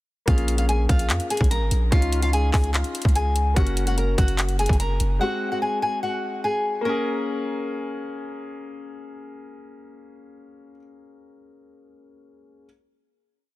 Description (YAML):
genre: hip hop, trap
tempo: 146 BPM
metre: 4/4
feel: half-time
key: Bb minor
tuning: A4 = 441 Hz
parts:
  - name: flamenco guitar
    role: melody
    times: 0.3-8.0 s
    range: F4 to Bb5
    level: -26 LUFS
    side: left 1 dB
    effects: tape echo
  - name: warm concert grand piano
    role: accompaniment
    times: 0.3-12.7 s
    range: Ab3 to Ab4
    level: -30 LUFS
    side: left 3 dB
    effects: none
  - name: long sustained 808-style bass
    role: bass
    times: 0.3-5.2 s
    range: Gb1 to F2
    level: -22 LUFS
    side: equal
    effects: none
  - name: trap drum kit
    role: drums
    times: 0.3-5.1 s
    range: handclaps, hi-hat, kick drum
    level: -22 LUFS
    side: equal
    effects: none
room: studio ambience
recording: dense, heavily limited modern master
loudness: -20 LUFS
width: side -18 dB against mid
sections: 0.3-6.9 hook; 6.9-10.1 final chord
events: none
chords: 0.3 Bbm7; 1.9 Dbadd9; 3.6 Gb; 5.2 Ab7; 6.9 Bbm7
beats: | 0.28 0.69 1.10 1.51 | 1.92 2.33 2.74 3.15 | 3.56 3.98 4.39 4.80 | 5.21 5.62 6.03 6.44 | 6.85 7.26 7.67 8.09 | 8.49 8.91 9.32 9.73